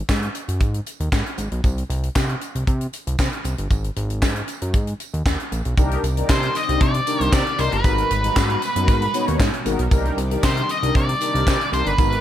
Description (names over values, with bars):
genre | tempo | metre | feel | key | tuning
early-eighties boogie funk | 116 BPM | 4/4 | straight | unclear | A4 = 439 Hz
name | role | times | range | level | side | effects
fat analog bass | bass | 0.0-12.2 s | G1 to C3 | -23 LUFS | equal | none
tight funk drum kit | drums | 0.1-12.2 s | handclaps, hi-hat, kick drum, snare drum | -22 LUFS | equal | gated reverb
tambourine | percussion | 0.1-12.1 s | none | -38 LUFS | right 16 dB | none
mellow synth brass | accompaniment | 5.8-12.2 s | Cb4 to Bb5 | -25 LUFS | left 2 dB | chorus
string machine, full ensemble | sustained chords | 5.8-12.2 s | Cb3 to D5 | -32 LUFS | right 1 dB | none
octave-fuzz lead guitar | melody | 6.3-12.2 s | B4 to Eb5 | -22 LUFS | equal | distortion, slapback echo
room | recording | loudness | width
small room ambience | none | -18 LUFS | side -11 dB against mid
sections
0.0-5.8 A section; 5.8-12.2 B section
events
none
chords
0.0 Ab7(no3); 1.6 C5; 3.7 Ab7(no3); 5.8 Cm9; 7.8 Abm9; 9.9 Cm9